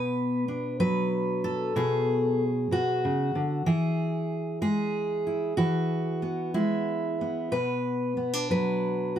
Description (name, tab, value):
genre	folk, solo fingerstyle acoustic guitar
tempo	62 BPM (dotted quarters)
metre	6/8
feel	rubato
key	unclear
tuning	A4 = 439 Hz
part	fingerpicked steel-string acoustic guitar	solo	0.0-9.2 s	B2 to B4	-25 LUFS	equal	none
room	light reverb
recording	none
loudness	-25 LUFS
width	side -10 dB against mid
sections	0.0-9.2 A section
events	none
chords	0.0 Bm; 3.7 E; 7.5 Bm